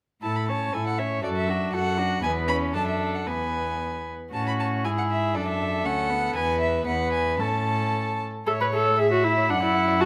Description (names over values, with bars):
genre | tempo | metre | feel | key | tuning
quick classical-period movement for string quartet | 110-121 BPM | 2/4 | rubato | A major | A4 = 439 Hz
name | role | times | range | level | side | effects
warm violin | melody | 0.2-10.1 s | C#5 to B5 | -32 LUFS | equal | none
dark violin | second line | 0.2-10.1 s | F#4 to A5 | -31 LUFS | equal | none
warm viola | accompaniment | 0.2-10.1 s | B3 to B4 | -29 LUFS | equal | none
rich cello | bass | 0.2-10.1 s | D2 to A2 | -32 LUFS | equal | none
room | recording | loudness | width
moderate recital hall reverb, RT60 1.6 s | close, detailed microphones | -25 LUFS | mono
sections
0.2-8.5 A section; 8.5-10.1 A section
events
none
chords
0.2 A; 1.2 D/F#; 2.2 E5; 2.7 D/F#; 3.3 E; 4.3 A; 5.3 D/F#; 6.3 E; 7.4 A; 9.5 D/F#